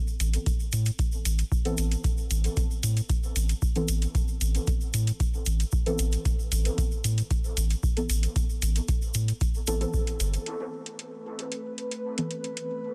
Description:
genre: dub techno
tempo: 114 BPM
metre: 4/4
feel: straight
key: A minor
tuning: A4 = 441 Hz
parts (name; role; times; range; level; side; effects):
- tube shaker; percussion; 0.1-10.4 s; none; -40 LUFS; equal; none
- soft dub sub bass; bass; 0.2-10.4 s; G1 to A2; -28 LUFS; equal; sidechain pumping
- electronic hi-hat; drums; 0.2-12.7 s; none; -36 LUFS; equal; none
- electronic kick drum; drums; 0.5-10.0 s; none; -30 LUFS; equal; none
- deep mellow chord stab; stabs; 1.7-12.3 s; E3 to A4; -38 LUFS; equal; chorus, phaser, sidechain pumping, dub echo
- airy breathy pad; sustained chords; 10.5-12.9 s; A3 to B4; -37 LUFS; equal; chorus, sidechain pumping
room: little or no reverb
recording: dense, heavily limited modern master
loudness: -28 LUFS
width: mono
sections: 0.0-10.5 A section; 10.5-12.9 B section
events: filter sweep on synth stab 0.0-10.5; filter sweep on analog synth pad 10.5-12.9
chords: 0.0 Amadd9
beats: 0.46 0.99 1.52 | 2.04 2.57 3.10 3.62 | 4.15 4.67 5.20 5.73 | 6.25 6.78 7.31 7.83 | 8.36 8.88 9.41 9.94 | 10.46 10.99 11.52 12.04 | 12.57

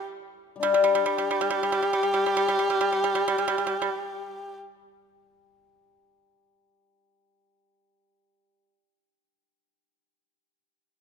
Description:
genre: chinese traditional, Chinese chamber ensemble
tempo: 70 BPM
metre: 2/4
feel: straight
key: unclear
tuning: A4 = 442 Hz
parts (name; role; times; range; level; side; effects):
- warm erhu; melody; 0.0-4.6 s; G4; -26 LUFS; left 1 dB; none
- pipa; second line; 0.6-3.9 s; G3; -28 LUFS; right 7 dB; none
- hammered dulcimer; accompaniment; 0.6-8.6 s; G3 to G4; -25 LUFS; left 7 dB; none
room: moderate scoring stage reverb, RT60 1.8 s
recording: none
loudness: -22 LUFS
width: side -6 dB against mid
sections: 0.7-4.1 A section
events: none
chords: none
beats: | 0.66 1.52 | 2.38 3.24

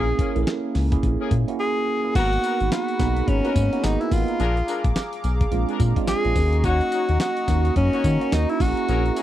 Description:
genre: R&B, new jack swing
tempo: 107 BPM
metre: 4/4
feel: swing 60% on 16ths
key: G# minor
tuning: A4 = 440 Hz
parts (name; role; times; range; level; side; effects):
- breathy tenor saxophone; melody; 0.0-9.2 s; C#4 to G#4; -24 LUFS; left 1 dB; none
- tine electric piano; accompaniment; 0.0-9.2 s; G#3 to A#4; -26 LUFS; right 7 dB; phaser
- mellow horn section; stabs; 0.0-9.2 s; A#3 to C#5; -33 LUFS; left 6 dB; none
- round analog bass; bass; 0.0-9.1 s; G#1 to D#3; -22 LUFS; left 1 dB; none
- dusty soul sampler-style drum kit; drums; 0.2-9.2 s; crash cymbal, handclaps, hi-hat, kick drum, snare drum, tambourine; -25 LUFS; left 1 dB; none
- warm analog pad; sustained chords; 2.2-9.2 s; F#4 to D6; -33 LUFS; equal; chorus
room: little or no reverb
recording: dry, close 1970s-style studio recording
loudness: -19 LUFS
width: side -12 dB against mid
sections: 0.0-2.2 A section; 2.2-9.2 B section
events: none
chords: 0.0 A#m7b5; 2.2 G#m9; 4.4 A#7; 6.4 D#m7; 8.6 A#m7b5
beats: 0.47 1.03 1.59 | 2.15 2.71 3.27 3.84 | 4.40 4.96 5.52 6.08 | 6.64 7.20 7.76 8.32 | 8.88

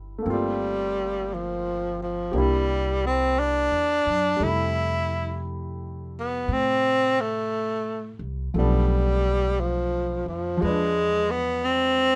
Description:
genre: jazz ballad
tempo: 58 BPM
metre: 4/4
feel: swing 66% on 8ths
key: unclear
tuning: A4 = 440 Hz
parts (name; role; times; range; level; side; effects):
- clear concert grand piano; accompaniment; 0.0-12.2 s; C3 to B4; -32 LUFS; equal; none
- upright bass; bass; 0.0-12.2 s; G1 to A2; -32 LUFS; equal; none
- breathy tenor saxophone; melody; 0.3-12.2 s; F3 to E4; -26 LUFS; equal; none
room: light reverb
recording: none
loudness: -25 LUFS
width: mono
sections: 0.0-12.2 A section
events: none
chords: 0.3 Gm11; 2.3 C9; 4.4 Fmaj9; 8.6 Bm7b5; 10.6 E7b9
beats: | 0.26 1.29 2.33 3.37 | 4.40 5.44 6.48 7.51 | 8.55 9.59 10.63 11.67

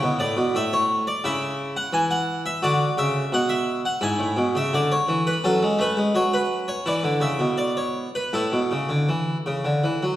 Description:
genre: classical, baroque-style suite movement for harpsichord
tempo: 79-88 BPM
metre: 4/4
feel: rubato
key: A major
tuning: A4 = 440 Hz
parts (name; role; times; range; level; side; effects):
- harpsichord; solo; 0.0-10.2 s; G#2 to G#5; -20 LUFS; equal; none
room: wet recital hall reverb, RT60 1.5 s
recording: heard from further back in the room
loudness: -20 LUFS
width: side -13 dB against mid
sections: 0.0-10.2 A section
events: none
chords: 0.0 A; 1.2 C#madd11; 2.6 Bm; 4.0 E/G#; 5.4 F#m; 6.9 E5; 8.3 A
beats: 0.54 1.24 1.93 | 2.63 3.32 4.03 4.73 | 5.44 6.16 6.87 7.59 | 8.33 9.09 9.84

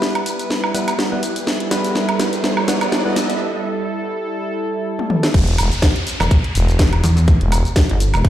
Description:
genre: bass house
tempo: 124 BPM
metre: 4/4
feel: swing 55% on 16ths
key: E minor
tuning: A4 = 439 Hz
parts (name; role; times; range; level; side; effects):
- sweeping resonant pad; sustained chords; 0.0-8.3 s; E3 to B4; -24 LUFS; right 2 dB; chorus, vintage 12-bit sampler grit, sidechain pumping
- percussive organ stab; stabs; 0.0-3.2 s; G3 to B4; -23 LUFS; left 1 dB; chorus, sidechain pumping, tape echo
- garage drum kit; drums; 0.0-8.3 s; crash cymbal, hi-hat, shaker, snare drum, toms, woodblock; -21 LUFS; equal; none
- riser and downlifter; sound effects; 0.4-8.3 s; none; -29 LUFS; right 1 dB; none
- growling FM bass; bass; 5.3-7.6 s; E1; -16 LUFS; equal; overdrive, sidechain pumping
- electronic kick drum; drums; 5.3-8.3 s; none; -13 LUFS; equal; none
- pulsing pluck wobble bass; bass; 6.2-8.3 s; E1 to E2; -15 LUFS; equal; chorus, tube saturation, sidechain pumping
room: moderate lush hall reverb, RT60 1.7 s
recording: played on a big sound system in a bare room, large studio reverb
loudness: -15 LUFS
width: side -12 dB against mid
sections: 0.0-5.3 A section; 5.3-8.3 B section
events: build-up 0.0-5.3; drum fill 0.0-3.4, 5.0-5.3; riser 0.4-3.4; break 3.4-5.3; drop 5.3-8.3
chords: 0.0 Em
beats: 0.02 0.50 0.99 | 1.47 1.96 2.44 2.92 | 3.41 3.89 4.37 4.86 | 5.34 5.83 6.31 6.79 | 7.28 7.76 8.24

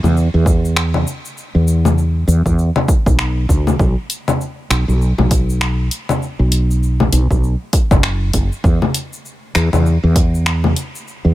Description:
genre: organic downtempo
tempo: 99 BPM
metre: 4/4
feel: swing 59% on 16ths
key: unclear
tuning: A4 = 440 Hz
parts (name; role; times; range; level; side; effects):
- woody fretless electric bass; bass; 0.0-11.3 s; F#1 to E2; -14 LUFS; equal; wide subtle chorus, sidechain pumping
- deep house drum kit; drums; 0.0-11.2 s; congas, finger snaps, hi-hat, shaker; -20 LUFS; left 2 dB; none
- electronic kick drum; drums; 0.5-10.3 s; none; -15 LUFS; equal; none
room: little or no reverb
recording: none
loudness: -13 LUFS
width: side -15 dB against mid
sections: 0.0-11.3 A section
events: none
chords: none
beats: 0.16 0.76 | 1.37 1.98 2.58 3.19 | 3.79 4.40 5.01 5.61 | 6.22 6.83 7.43 8.04 | 8.64 9.25 9.86 10.46 | 11.07

